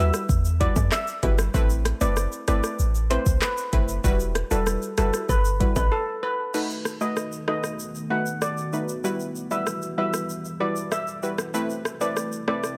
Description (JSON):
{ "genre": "dancehall", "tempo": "96 BPM", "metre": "4/4", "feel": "straight", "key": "E harmonic minor", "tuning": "A4 = 440 Hz", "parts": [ { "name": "steel pan", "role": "melody", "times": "0.0-12.7 s", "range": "A4 to F#5", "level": "-31 LUFS", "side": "equal", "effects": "tape echo" }, { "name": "glassy wavetable pluck", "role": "accompaniment", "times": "0.0-12.8 s", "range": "G3 to B4", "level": "-31 LUFS", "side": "equal", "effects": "chorus" }, { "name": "clean 808-style bass", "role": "bass", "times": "0.0-5.9 s", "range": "E1 to F#2", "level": "-26 LUFS", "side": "equal", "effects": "none" }, { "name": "afro-pop drum kit", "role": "drums", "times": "0.1-12.8 s", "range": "crash cymbal, handclaps, hi-hat, kick drum, rim click, shaker", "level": "-28 LUFS", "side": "equal", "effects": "overdrive" }, { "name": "tube shaker and timbales", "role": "percussion", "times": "0.1-12.8 s", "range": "none", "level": "-38 LUFS", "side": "equal", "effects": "none" }, { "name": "deep dark ambient pad", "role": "sustained chords", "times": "6.9-12.8 s", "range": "C3 to F#4", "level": "-37 LUFS", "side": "equal", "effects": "chorus, built-in reverb, sidechain pumping" } ], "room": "digital ambience", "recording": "none", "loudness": "-25 LUFS", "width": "mono", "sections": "0.0-6.5 A section; 6.5-12.8 B section", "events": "break 5.9-6.5, 6.5-12.8", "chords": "0.0 Emadd9; 1.5 Amadd9; 4.0 Emadd9; 6.5 B7; 9.0 Emadd9; 11.5 Amadd9" }